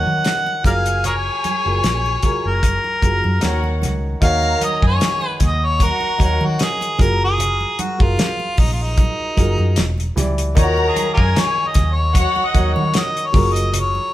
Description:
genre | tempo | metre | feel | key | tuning
lush 1970s-style soul | 76 BPM | 4/4 | swing 54% on 16ths | Eb minor | A4 = 440 Hz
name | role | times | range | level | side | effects
warm harmonica | melody | 0.0-14.1 s | Eb4 to Gb5 | -20 LUFS | left 1 dB | none
dark studio violin section | second line | 0.0-12.9 s | Gb4 to Bb5 | -25 LUFS | left 1 dB | none
warm concert grand piano | accompaniment | 0.0-14.1 s | Eb3 to D5 | -26 LUFS | equal | none
vintage muted fingered electric bass | bass | 0.0-14.0 s | E1 to Eb3 | -20 LUFS | equal | none
congas | percussion | 0.1-14.1 s | none | -29 LUFS | right 5 dB | none
damped 70s drum kit | drums | 0.2-13.9 s | hi-hat, kick drum, snare drum | -18 LUFS | equal | none
room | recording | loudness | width
moderate stone room reverb, RT60 1.4 s | band playing live in one room | -15 LUFS | side -14 dB against mid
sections
0.0-4.2 A section; 4.2-14.1 B section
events
harmonica solo 4.2-14.1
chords
0.0 Ebm7; 0.6 Gbmaj9; 3.4 Ebm7; 7.0 Gbmaj9; 9.8 Em7; 10.6 Ebm7; 13.3 Gbmaj9

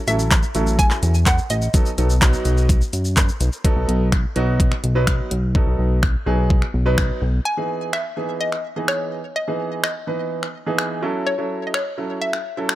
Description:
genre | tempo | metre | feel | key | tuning
dance-pop | 126 BPM | 4/4 | straight | E major | A4 = 445 Hz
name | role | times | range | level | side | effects
hollow square pluck | melody | 0.1-3.1, 7.5-12.8 s | C#5 to G#5 | -25 LUFS | left 1 dB | chorus, digital delay
warm baby grand piano | accompaniment | 0.1-12.8 s | E3 to B4 | -25 LUFS | right 2 dB | sidechain pumping
chorused synth bass | bass | 0.1-7.4 s | A1 to F#2 | -19 LUFS | equal | sidechain pumping
pop drum kit | drums | 0.1-12.8 s | finger snaps, handclaps, hi-hat, kick drum, shaker | -19 LUFS | equal | overdrive
room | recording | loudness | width
digital ambience | none | -18 LUFS | side -15 dB against mid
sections
0.0-3.6 A section; 3.6-7.5 B section; 7.5-12.8 C section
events
none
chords
0.0 A6; 1.7 B7; 7.5 Emaj7; 11.0 A6

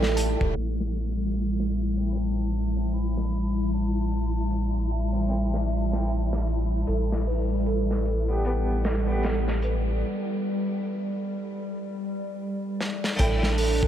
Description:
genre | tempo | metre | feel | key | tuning
trip hop | 76 BPM | 4/4 | swing 60% on 16ths | A minor | A4 = 445 Hz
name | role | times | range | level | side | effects
warbly tape-like pad | sustained chords | 0.0-13.9 s | G3 to D4 | -30 LUFS | left 1 dB | chorus, built-in reverb, vintage 12-bit sampler grit
music box | arpeggios | 0.0-0.3, 6.9-13.7 s | A4 to A5 | -33 LUFS | right 4 dB | vintage 12-bit sampler grit, ping-pong delay
soft dub sub bass | bass | 0.0-13.9 s | E1 to A1 | -26 LUFS | equal | none
crunchy breakbeat drum kit | drums | 0.0-13.9 s | crash cymbal, hi-hat, kick drum, snare drum | -31 LUFS | equal | high-pass filter on kick, high-pass filter on hats, high-pass filter on cymbals, high-pass filter on snare, high-pass filter on room
flickering grainy texture | texture | 0.0-10.0 s | E3 to E4 | -37 LUFS | left 1 dB | built-in reverb
harpsichord | accompaniment | 2.0-13.9 s | A3 to C5 | -37 LUFS | equal | tremolo, tape echo
mellow hollow jazz flute | melody | 2.1-6.5 s | E5 to B5 | -41 LUFS | left 2 dB | tape echo
room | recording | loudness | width
moderate huge ambient reverb, RT60 8.0 s | dreamy mix soaked in reverb, low-pass filter | -24 LUFS | side -10 dB against mid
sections
0.6-13.2 A section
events
filter sweep on ambient pad 0.6-13.2; filter sweep 0.6-13.2; break 10.0-13.2; drum fill 12.8-13.2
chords
0.0 N.C.; 0.6 Am; 6.9 G/A; 13.2 Am

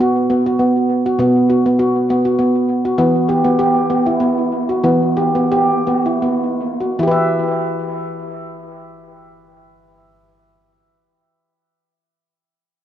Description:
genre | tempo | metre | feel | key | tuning
world meditative, meditative tuned percussion | 75-100 BPM | 3/4 | straight | E minor | A4 = 442 Hz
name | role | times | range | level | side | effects
handpan | solo | 0.0-10.9 s | B2 to E5 | -14 LUFS | equal | analog delay
room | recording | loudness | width
wet echo chamber reverb, RT60 2.4 s | echo-heavy mix, faint mains hum | -14 LUFS | side -10 dB against mid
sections
0.0-7.0 A section; 7.0-11.8 B section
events
slowing down 3.0-7.0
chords
0.0 B5; 3.0 Em

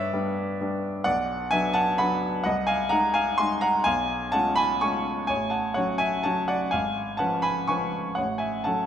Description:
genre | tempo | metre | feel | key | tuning
classical, piano waltz | 127 BPM | 3/4 | uneven beats, rubato | F# minor | A4 = 439 Hz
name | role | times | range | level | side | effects
clear grand piano | solo | 0.0-8.9 s | G#1 to C#6 | -23 LUFS | equal | none
room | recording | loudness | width
moderate concert hall reverb, RT60 2.1 s | minimal, uncompressed stereo recording | -23 LUFS | side -9 dB against mid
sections
0.0-8.9 A section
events
none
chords
0.0 G; 1.1 Bm; 2.5 G#7/B#; 3.9 C#7/B; 5.3 F#m/A; 6.7 C#7/G#; 8.2 F#m/A

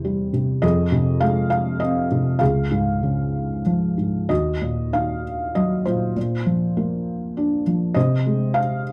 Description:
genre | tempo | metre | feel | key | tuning
classical, lyrical solo piano | 93-103 BPM | 3/4 | rubato | Eb dorian | A4 = 439 Hz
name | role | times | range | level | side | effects
felt-muted upright piano | solo | 0.0-8.9 s | Db2 to F5 | -22 LUFS | equal | none
room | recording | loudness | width
light reverb | dark, warm production | -21 LUFS | mono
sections
0.0-8.9 A section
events
none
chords
0.0 C/E; 0.6 Fm7; 2.4 Db; 4.3 Ebmadd9; 6.2 Bb; 8.0 Ab/C

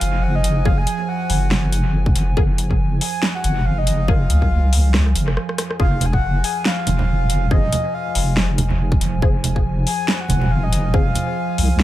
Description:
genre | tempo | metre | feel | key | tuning
deep dubstep | 140 BPM | 4/4 | swing 57% on 16ths, half-time | F phrygian | A4 = 440 Hz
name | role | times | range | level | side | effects
breathy flute-like synth lead | melody | 0.0-11.8 s | Eb5 to Ab5 | -26 LUFS | left 1 dB | wide subtle chorus, dub echo
dark analog pad | sustained chords | 0.0-11.8 s | F3 to Ab5 | -27 LUFS | right 2 dB | chorus
deep soft wobble bass | bass | 0.0-11.8 s | F1 to Db2 | -18 LUFS | equal | chorus
dubstep drum kit | drums | 0.0-11.8 s | hi-hat, rim click, snare drum | -23 LUFS | equal | dub echo
filtered dub chord stab | stabs | 0.7-11.0 s | F3 to Ab4 | -30 LUFS | left 4 dB | phaser, ensemble chorus, dub echo
electronic kick drum | drums | 0.7-11.0 s | none | -19 LUFS | equal | none
congas | percussion | 6.0-11.2 s | none | -24 LUFS | right 3 dB | none
room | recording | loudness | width
little or no reverb | echo-heavy mix | -16 LUFS | side -14 dB against mid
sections
0.0-11.8 A section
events
drum fill 4.9-5.8; break 5.4-5.8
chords
0.0 Gbsus2; 5.8 Fm

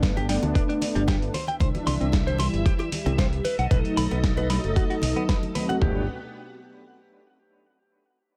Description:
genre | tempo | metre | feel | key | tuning
nu-disco, nu disco | 114 BPM | 4/4 | swing 53% on 16ths | G major | A4 = 444 Hz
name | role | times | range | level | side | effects
mellow synth brass | accompaniment | 0.0-6.0 s | E3 to G4 | -31 LUFS | equal | chorus, sidechain pumping, tape echo
string machine, full ensemble | sustained chords | 0.0-6.1 s | B3 to F#5 | -38 LUFS | equal | ensemble chorus, sidechain pumping
modern bright fingered electric bass | bass | 0.0-6.1 s | F#1 to D2 | -29 LUFS | equal | none
dusty soul sampler-style drum kit | drums | 0.0-5.9 s | kick drum, toms | -26 LUFS | equal | overdrive
dusty soul sampler-style drum kit | drums | 0.0-5.8 s | hi-hat, snare drum | -34 LUFS | equal | overdrive
direct-recorded clean electric guitar | riff | 0.2-6.1 s | G3 to C6 | -33 LUFS | equal | subtle chorus, vintage 12-bit sampler grit, low-pass filter, tape echo
congas | percussion | 0.2-5.8 s | none | -38 LUFS | equal | none
room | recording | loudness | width
little or no reverb | none | -24 LUFS | mono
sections
0.0-5.8 A section; 5.8-7.9 B section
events
filter sweep on analog polysynth 0.0-5.8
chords
0.0 G; 1.3 C; 3.4 B7; 5.8 Gmaj7

